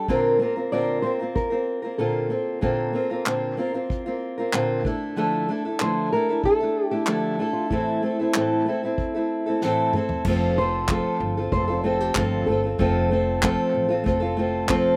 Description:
acoustic pop; 94 BPM; 4/4; straight; A4 = 439 Hz
fingerpicked steel-string acoustic guitar; accompaniment; 0.0-15.0 s; A2 to Bb4; -25 LUFS; equal
unplugged drum kit; drums; 0.1-14.8 s; crash cymbal, handclaps, kick drum, snare drum, toms; -29 LUFS; equal
nylon-string guitar; melody; 0.7-13.7 s; E4 to D5; -29 LUFS; equal
upright bass; bass; 10.2-15.0 s; F1 to A1; -30 LUFS; equal
little or no reverb; recorded outdoors, with no room sound; -24 LUFS; mono
0.0-10.3 A section; 10.3-15.0 B section
drum fill 9.6-10.3
0.1 Bbadd9; 4.9 Dmadd9; 7.7 Am; 10.3 F

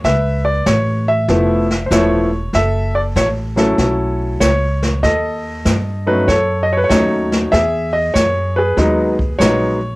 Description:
jazz piano trio; 96 BPM; 4/4; swing 67% on 8ths; A4 = 440 Hz
warm baby grand piano; melody; 0.0-10.0 s; E#3 to E5; -15 LUFS; equal; cassette tape
upright bass; bass; 0.0-10.0 s; E1 to G2; -19 LUFS; equal
jazz brush drum kit; drums; 0.0-10.0 s; brushed snare drum, hi-hat, kick drum, snare drum; -19 LUFS; equal; cassette tape
light reverb; home recording on cassette; -13 LUFS; side -21 dB against mid
0.0-10.0 A section
0.0 C#7alt; 2.5 F#m7; 5.0 D#m7b5; 7.5 Emaj9

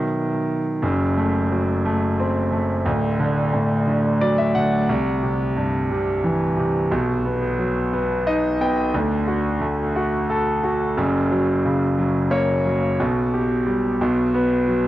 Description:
pop; 59 BPM (dotted quarters); 6/8; straight; A4 = 439 Hz
clear concert grand piano; solo; 0.0-14.9 s; D1 to G5; -18 LUFS; equal; tape echo
wet studio reverb, RT60 0.6 s; home recording on cassette; -18 LUFS; side -14 dB against mid
0.8-14.9 A section
grand piano fill 3.9-4.9, 7.9-8.9, 12.0-13.0
0.0 B; 0.8 F#dim; 2.9 D; 4.9 C; 6.9 B; 8.9 D; 11.0 F#; 13.0 G/B; 14.0 B5

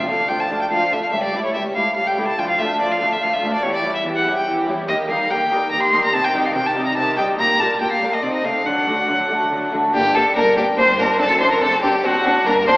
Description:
classical, baroque-style concerto movement with solo episodes; 143 BPM; 3/4; straight; D minor, G minor from 4.9 s; A4 = 440 Hz
rich chamber violin section; melody; 0.0-12.8 s; F#4 to C6; -30 LUFS; left 1 dB
rich violin; melody; 0.0-12.8 s; F#4 to C6; -18 LUFS; equal
rich chamber violin section; second line; 0.0-12.7 s; C4 to Bb4; -25 LUFS; equal
lute; accompaniment; 0.0-12.8 s; D2 to D5; -25 LUFS; equal
rich studio viola section; accompaniment; 0.0-12.7 s; Eb3 to C4; -27 LUFS; equal
warm chamber cello section; bass; 0.1-12.8 s; C#2 to D3; -30 LUFS; equal
warm chamber double bass section; bass; 9.9-12.8 s; F#1 to G1; -30 LUFS; right 1 dB
wet scoring stage reverb, RT60 1.6 s; heard from further back in the room, AM radio sound; -16 LUFS; side -21 dB against mid
0.0-9.9 A section; 9.9-12.8 B section
0.0 Dm; 1.1 A7/C#; 2.4 Dm; 3.6 C#dim/E; 4.9 Eb; 6.1 Cm; 7.4 Gm/Bb; 8.2 Adim/C; 8.7 D; 9.9 Gm; 11.2 D7/F#

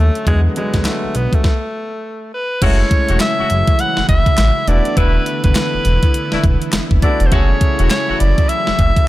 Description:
R&B, new jack swing; 102 BPM; 4/4; swing 60% on 16ths; A4 = 440 Hz
clear alto saxophone; melody; 0.0-9.1 s; G#3 to F#5; -20 LUFS; equal
clear concert grand piano; accompaniment; 0.0-9.1 s; D3 to G#4; -24 LUFS; equal
smooth synth bass; bass; 0.0-8.9 s; E1 to E2; -15 LUFS; equal
clean 12-bit digital drum machine; drums; 0.2-9.1 s; crash cymbal, handclaps, hi-hat, kick drum, snare drum; -16 LUFS; equal
phased analog pad; sustained chords; 2.6-9.1 s; C#3 to E4; -24 LUFS; right 1 dB; phaser, chorus
dark horn section; stabs; 2.6-8.2 s; A3 to F#4; -25 LUFS; left 3 dB
digital ambience; -13 LUFS; side -16 dB against mid
0.0-2.6 A section; 2.6-9.1 B section
stop 1.4-2.6
0.3 E7; 1.4 N.C.; 2.6 F#m7; 4.7 E7sus4; 7.3 F#m7

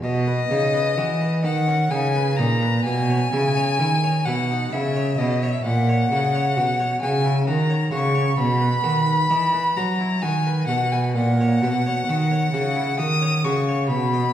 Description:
classical, baroque-style sonata movement with continuo; 65 BPM; 3/4; rubato; B major; A4 = 439 Hz
rich violin; melody; 0.0-14.3 s; D#5 to D#6; -23 LUFS; left 2 dB
harpsichord; accompaniment; 0.0-14.3 s; A#2 to D#5; -27 LUFS; equal
warm cello; bass; 0.0-14.3 s; A#2 to F#3; -21 LUFS; right 1 dB
wet recital hall reverb, RT60 1.3 s; heard from further back in the room; -18 LUFS; side -11 dB against mid
0.0-14.3 A section
0.0 B; 2.8 C#m7/B; 5.6 F#/A#; 8.4 B; 11.2 F#/A#

